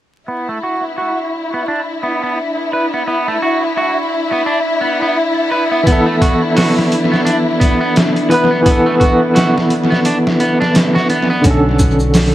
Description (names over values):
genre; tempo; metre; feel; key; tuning
trip hop; 86 BPM; 4/4; swing 58% on 16ths; B minor; A4 = 440 Hz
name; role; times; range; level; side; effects
warm symphonic string section; sustained chords; 0.3-11.5 s; E4; -19 LUFS; left 1 dB; none
electric guitar at the edge of break-up; arpeggios; 0.3-11.4 s; A3 to B4; -19 LUFS; right 2 dB; low-pass filter, analog delay
bowed-like drone; texture; 0.7-12.3 s; D3 to D4; -25 LUFS; left 1 dB; built-in reverb
barky tine electric piano; accompaniment; 5.8-12.3 s; D3 to B4; -14 LUFS; equal; tremolo, tape echo
trip hop sampler-style drum kit; drums; 5.9-12.3 s; hi-hat, kick drum, snare drum; -15 LUFS; equal; studio ambience, tape echo
maracas; percussion; 11.4-12.3 s; none; -28 LUFS; left 1 dB; tape echo
upright bass; bass; 11.5-12.3 s; B1; -15 LUFS; equal; none
room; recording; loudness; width
light reverb, studio reverb; echo-heavy mix, vinyl crackle; -12 LUFS; side -13 dB against mid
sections
0.3-11.4 A section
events
filter sweep on clean electric guitar 0.3-11.4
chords
0.3 Bm; 5.9 Esus4; 11.4 Bm9